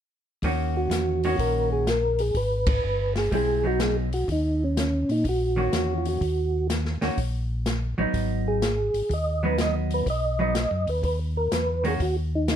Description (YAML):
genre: soul jazz organ trio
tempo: 124 BPM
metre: 4/4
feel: swing 67% on 8ths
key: Eb minor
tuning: A4 = 440 Hz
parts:
  - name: hollow-body jazz guitar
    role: accompaniment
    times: 0.4-12.0 s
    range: Eb3 to Gb4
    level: -28 LUFS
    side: equal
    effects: none
  - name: mellow tonewheel organ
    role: bass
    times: 0.4-12.6 s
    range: G1 to Bb2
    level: -27 LUFS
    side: equal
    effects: slow rotary speaker
  - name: open jazz drum kit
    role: drums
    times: 0.4-12.6 s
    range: hi-hat, kick drum, ride cymbal, snare drum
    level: -30 LUFS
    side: left 1 dB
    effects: none
  - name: percussive tonewheel organ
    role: melody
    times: 0.8-12.6 s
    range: Db4 to Eb5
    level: -26 LUFS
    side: right 1 dB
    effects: slow rotary speaker, chorus vibrato
room: light reverb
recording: dark, warm production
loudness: -22 LUFS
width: side -9 dB against mid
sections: 0.4-12.6 A section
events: band accent 2.6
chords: 0.4 Ebm7; 2.4 Abm7; 4.3 Ebm7; 8.1 Abm7; 12.0 Ebm